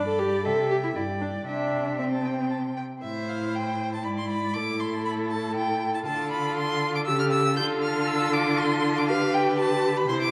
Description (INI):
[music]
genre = quick classical-period movement for string quartet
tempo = 119 BPM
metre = 3/4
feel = straight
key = C major, A minor from 3.0 s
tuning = A4 = 440 Hz
[part]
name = clear violin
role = melody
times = 0.0-10.3 s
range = E5 to G6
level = -32 LUFS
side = equal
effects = none
[part]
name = rich violin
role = second line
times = 0.0-10.3 s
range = A4 to A5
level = -34 LUFS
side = equal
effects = none
[part]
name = rich viola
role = accompaniment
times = 0.0-10.3 s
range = C4 to A4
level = -30 LUFS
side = equal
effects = none
[part]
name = rich cello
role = bass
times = 0.0-10.3 s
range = G2 to D3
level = -32 LUFS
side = equal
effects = none
[sound]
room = wet recital hall reverb, RT60 1.7 s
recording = dark, warm production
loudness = -26 LUFS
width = mono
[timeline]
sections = 0.0-3.0 A section; 3.0-10.3 B section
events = none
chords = 0.5 C; 1.0 G5; 1.5 C; 3.0 Am; 4.0 E7/G#; 4.6 A5; 6.1 Dm; 7.1 A7/C#; 7.6 Dm; 9.1 G/D